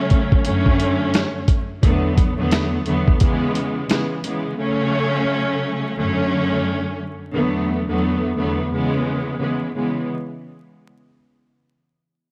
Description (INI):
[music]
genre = hip hop, boom-bap hip-hop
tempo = 87 BPM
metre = 4/4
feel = swing 59% on 16ths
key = unclear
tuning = A4 = 440 Hz
[part]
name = dark studio string section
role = accompaniment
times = 0.0-10.1 s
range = E2 to C#4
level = -22 LUFS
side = equal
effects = cassette tape
[part]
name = dusty soul sampler-style drum kit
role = drums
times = 0.1-4.4 s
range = hi-hat, kick drum, snare drum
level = -20 LUFS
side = equal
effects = none
[sound]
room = light reverb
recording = worn, warbling old tape, cassette tape, vinyl crackle, warbly pitch drift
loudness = -20 LUFS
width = mono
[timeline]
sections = 0.0-10.1 A section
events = none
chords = 0.5 Dmaj7/F#; 1.8 E7sus4; 3.2 C#m7; 4.6 F#m; 6.0 Dmaj7/F#; 7.3 E7sus4; 8.7 C#m7